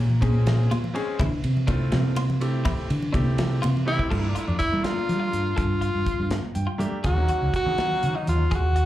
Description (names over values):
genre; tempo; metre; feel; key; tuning
electric jazz fusion; 82 BPM (dotted quarters); 6/8; straight; unclear; A4 = 439 Hz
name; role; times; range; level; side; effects
fretless electric bass; bass; 0.0-8.8 s; Db2 to G3; -23 LUFS; equal; none
congas; percussion; 0.1-3.9 s; none; -31 LUFS; left 1 dB; slapback echo
clear grand piano; accompaniment; 0.2-8.4 s; Gb3 to G5; -32 LUFS; left 1 dB; slapback echo
clean electric guitar; stabs; 0.2-8.9 s; Db4 to A4; -35 LUFS; left 3 dB; wide subtle chorus, slapback echo
modern studio drum kit; drums; 0.2-8.9 s; crash cymbal, hi-hat, kick drum, ride cymbal, snare drum, toms; -29 LUFS; equal; none
breathy tenor saxophone; melody; 3.9-8.9 s; D4 to Gb4; -26 LUFS; equal; slapback echo
room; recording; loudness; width
little or no reverb; live gig heard through the venue's PA, club reverb; -21 LUFS; side -14 dB against mid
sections
0.0-4.1 A section; 4.1-8.9 B section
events
fretless electric bass solo 0.0-4.1; drum fill 3.9; grand piano fill 6.3-7.1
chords
0.0 Eb9sus4 (rootless); 1.2 G13sus4; 4.1 Gm9; 7.1 Ebm9